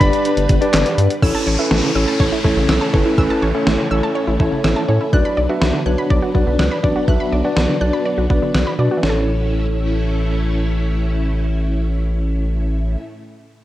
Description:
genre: synth-pop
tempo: 123 BPM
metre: 4/4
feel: straight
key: A mixolydian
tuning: A4 = 440 Hz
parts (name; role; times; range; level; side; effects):
- wide unison lead; melody; 0.0-0.7 s; B5; -24 LUFS; right 1 dB; tape echo
- tine electric piano; accompaniment; 0.0-13.0 s; C#4 to E5; -20 LUFS; left 1 dB; medium stereo tremolo
- string machine, full ensemble; sustained chords; 0.0-13.0 s; A2 to F#5; -25 LUFS; equal; ensemble chorus
- round analog bass; bass; 0.0-13.0 s; G1 to B2; -19 LUFS; equal; none
- gated 80s digital drum machine; drums; 0.0-9.1 s; handclaps, hi-hat, kick drum, snare drum; -18 LUFS; equal; gated reverb, gated reverb snare, overdrive
- wide unison pluck; arpeggios; 1.2-13.0 s; C#3 to F#6; -24 LUFS; right 1 dB; tape echo
- downlifter; sound effects; 1.2-5.1 s; none; -26 LUFS; equal; none
room: light reverb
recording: worn, warbling old tape, cassette tape, warbly pitch drift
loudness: -15 LUFS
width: side -14 dB against mid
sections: 0.0-1.2 A section; 1.2-9.0 B section; 9.0-12.9 C section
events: none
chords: 0.0 Gmaj7; 1.2 A; 5.1 Bm; 9.0 A

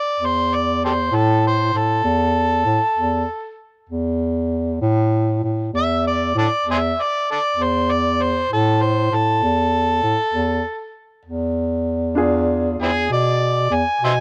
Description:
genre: slow blues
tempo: 65 BPM (dotted quarters)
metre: 12/8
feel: straight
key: A minor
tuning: A4 = 440 Hz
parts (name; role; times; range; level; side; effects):
- overdriven harmonica; melody; 0.0-14.2 s; C4 to G#5; -21 LUFS; equal; slapback echo
- dark bass clarinet; bass; 0.2-14.2 s; E2 to B2; -22 LUFS; equal; none
- warm upright piano; accompaniment; 12.2-14.2 s; D4 to G#4; -26 LUFS; equal; none
room: little or no reverb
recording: recorded outdoors, with no room sound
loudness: -19 LUFS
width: mono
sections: 0.0-14.2 A section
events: harmonica solo 0.0-14.2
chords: 0.0 A5; 12.2 E7b9

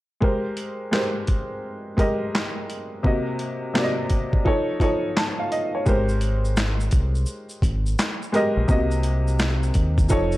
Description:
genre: lo-fi hip hop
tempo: 85 BPM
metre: 4/4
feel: swing 65% on 16ths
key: Ab major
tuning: A4 = 440 Hz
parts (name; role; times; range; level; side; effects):
- clear upright piano; accompaniment; 0.2-10.4 s; C3 to A5; -24 LUFS; equal; low-pass filter
- boom bap sampler-style drum kit; drums; 0.2-10.4 s; handclaps, hi-hat, kick drum, shaker, snare drum; -23 LUFS; equal; none
- deep dub fingered electric bass; bass; 5.9-10.4 s; F1 to Eb2; -22 LUFS; equal; transformer saturation
room: digital ambience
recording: dry, gritty hardware recording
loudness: -20 LUFS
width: side -17 dB against mid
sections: 0.2-5.9 A section; 5.9-10.4 B section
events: upright piano fill 4.8-5.9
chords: 0.2 Abmaj9; 3.0 Cm7b5; 4.5 F7b13; 5.9 Abmaj9; 8.7 Cm7b5

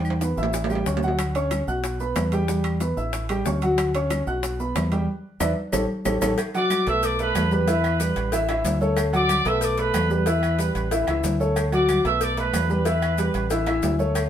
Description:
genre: latin, salsa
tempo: 185 BPM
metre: 4/4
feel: straight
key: D major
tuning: A4 = 440 Hz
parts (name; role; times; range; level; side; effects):
- dark upright piano; accompaniment; 0.0-14.3 s; E3 to F#6; -24 LUFS; equal; none
- deep dub fingered electric bass; bass; 0.0-14.3 s; A1 to E2; -26 LUFS; equal; none
- bongos and cowbell; percussion; 0.0-14.3 s; none; -33 LUFS; left 2 dB; none
- claves; percussion; 0.0-14.3 s; none; -37 LUFS; right 1 dB; none
- congas; percussion; 0.0-14.3 s; none; -32 LUFS; left 1 dB; none
- maracas; percussion; 0.0-14.3 s; none; -37 LUFS; left 4 dB; none
- timbales and agogo bells; percussion; 0.1-14.3 s; none; -33 LUFS; right 4 dB; none
- bright trumpet section; melody; 6.5-13.6 s; B4 to E6; -26 LUFS; right 2 dB; none
room: moderate studio reverb, RT60 0.8 s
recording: band playing live in one room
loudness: -20 LUFS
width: side -10 dB against mid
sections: 0.0-6.4 A section; 6.4-14.3 B section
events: drum fill 0.0-1.2, 5.1-6.4; band accent 5.1-6.4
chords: 0.0 Em; 0.5 A7; 1.2 Dmaj7; 1.8 B5; 2.5 Em; 3.1 A7; 3.8 Dmaj7; 4.4 B5; 5.1 E5; 5.7 A7; 6.4 D; 7.0 Bm7; 7.7 Em; 8.3 A; 9.0 Dmaj7; 9.6 Bm7; 10.3 Em; 10.9 A; 11.6 Dmaj7; 12.2 Bm7; 12.9 Em; 13.5 A

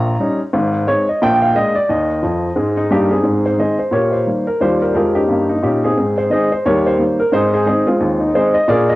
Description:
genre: jazz, stride piano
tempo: 176 BPM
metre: 4/4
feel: swing 59% on 8ths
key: Ab major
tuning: A4 = 440 Hz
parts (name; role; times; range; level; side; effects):
- warm upright piano; solo; 0.0-9.0 s; Ab1 to Bb5; -13 LUFS; equal; cassette tape
room: moderate spring reverb, RT60 1.6 s, small room ambience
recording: home recording on cassette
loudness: -13 LUFS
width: side -18 dB against mid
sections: 0.0-3.2 A section; 3.2-9.0 B section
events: upright piano fill 2.2-3.2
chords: 0.0 Eb7; 0.5 Ab; 1.2 Bb7; 1.9 Ebsus2; 2.6 Eb; 3.2 Ab; 3.9 Eb/Bb; 4.6 Eb13; 6.0 Ab; 6.6 Eb; 7.3 Ab

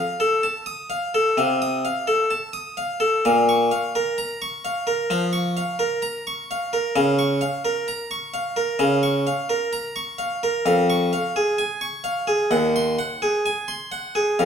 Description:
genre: classical, baroque-style suite movement for harpsichord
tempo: 64 BPM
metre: 4/4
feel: rubato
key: Bb minor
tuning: A4 = 441 Hz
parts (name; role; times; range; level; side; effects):
- harpsichord; solo; 0.0-14.5 s; Eb2 to Eb6; -20 LUFS; equal; none
room: wet stone room reverb, RT60 1.2 s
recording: none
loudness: -20 LUFS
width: side -7 dB against mid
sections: 0.0-14.5 A section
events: none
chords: 0.0 F7; 3.2 Bbm; 7.0 Bbm/Db; 10.7 Db/F; 12.5 Ab7/Eb

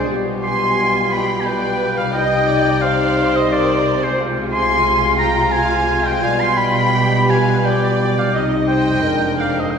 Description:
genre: classical, slow romantic movement for symphony orchestra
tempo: 87 BPM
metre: 3/4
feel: uneven beats, rubato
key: C minor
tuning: A4 = 440 Hz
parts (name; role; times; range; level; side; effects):
- rich studio violin section; melody; 0.0-9.8 s; Ab4 to Ab5; -26 LUFS; left 3 dB; none
- clear oboe; second line; 0.0-9.8 s; C5 to C6; -20 LUFS; right 1 dB; none
- warm studio violin section; second line; 0.0-9.8 s; C5 to C6; -24 LUFS; equal; none
- warm studio viola section; accompaniment; 0.0-9.8 s; F4 to Eb5; -23 LUFS; right 1 dB; none
- warm French horn section; sustained chords; 0.0-9.8 s; G3 to F4; -22 LUFS; left 4 dB; none
- concert harp; arpeggios; 0.0-9.8 s; F2 to D5; -27 LUFS; left 3 dB; none
- dark studio double bass section; bass; 0.0-9.8 s; F1 to C2; -25 LUFS; right 3 dB; none
- warm studio cello section; bass; 0.0-9.8 s; F2 to C3; -24 LUFS; right 2 dB; none
room: wet scoring stage reverb, RT60 2.1 s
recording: heard from further back in the room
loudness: -14 LUFS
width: side -6 dB against mid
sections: 0.0-9.8 A section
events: none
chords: 0.1 G7/B; 2.1 Cm; 4.2 Fm/C; 6.2 G7/B; 8.3 Cm; 9.0 Ddim/F

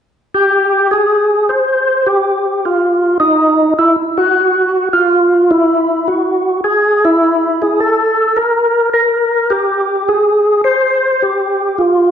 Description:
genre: jazz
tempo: 105 BPM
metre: 4/4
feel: swing 68% on 8ths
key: unclear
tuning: A4 = 442 Hz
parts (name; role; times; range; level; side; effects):
- percussive tonewheel organ; solo; 0.3-12.1 s; Eb4 to C5; -10 LUFS; equal; overdrive, chorus vibrato, slow rotary speaker
room: wet recital hall reverb, RT60 1.8 s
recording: recorded in a church or concert hall, nothing above 10.6 kHz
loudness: -11 LUFS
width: side -8 dB against mid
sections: 0.9-12.1 A section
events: none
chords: none

